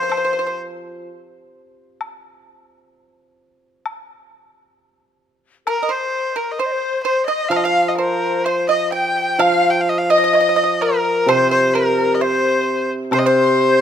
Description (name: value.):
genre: chinese traditional, Chinese chamber ensemble.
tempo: 65 BPM.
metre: 2/4.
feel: rubato.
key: C yu mode.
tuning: A4 = 440 Hz.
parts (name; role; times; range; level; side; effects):
clear erhu; melody; 0.0-0.6, 5.7-13.8 s; Bb4 to G5; -20 LUFS; equal; none.
mellow large dizi; second line; 0.0-0.6, 5.7-13.8 s; Bb4 to G5; -20 LUFS; left 8 dB; none.
pipa; second line; 0.0-0.5, 5.7-13.8 s; Bb4 to G5; -22 LUFS; right 7 dB; none.
hammered dulcimer; accompaniment; 0.0-1.0, 7.5-13.8 s; C3 to F3; -21 LUFS; right 2 dB; none.
woodblock; percussion; 0.1-13.3 s; none; -28 LUFS; left 5 dB; none.
room: light reverb.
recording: close, detailed microphones.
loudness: -15 LUFS.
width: side -9 dB against mid.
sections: 0.0-9.4 A section; 9.4-13.8 B section.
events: none.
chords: none.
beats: | 0.12 1.05 | 2.00 2.94 | 3.85 4.76 | 5.67 6.59 | 7.52 8.45 | 9.40 10.34 | 11.29 12.21 | 13.13.